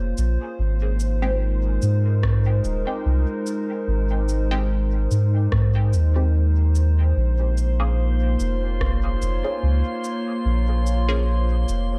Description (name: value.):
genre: ambient dub.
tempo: 73 BPM.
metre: 4/4.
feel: swing 55% on 16ths.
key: unclear.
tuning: A4 = 439 Hz.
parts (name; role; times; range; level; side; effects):
warbly tape-like pad; sustained chords; 0.0-12.0 s; Ab3 to Db5; -30 LUFS; equal; chorus, built-in reverb.
soft dub sub bass; bass; 0.0-12.0 s; Eb1 to Ab2; -22 LUFS; equal; none.
electronic cabasa and rim click; drums; 0.2-11.9 s; none; -37 LUFS; equal; overdrive, dub echo.
filtered dub chord stab; stabs; 1.2-11.2 s; Ab3 to Ab4; -35 LUFS; equal; phaser, subtle chorus, dub echo.
electronic kick drum; drums; 2.2-9.0 s; none; -30 LUFS; equal; none.
drifting glass-harmonics texture; texture; 7.7-12.0 s; C6; -38 LUFS; equal; chorus, built-in reverb.
room: digital ambience.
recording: dark, warm production.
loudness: -21 LUFS.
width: mono.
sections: 0.0-12.0 A section.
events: none.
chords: 0.0 Bbm; 0.6 Abmaj7; 7.2 Bbm.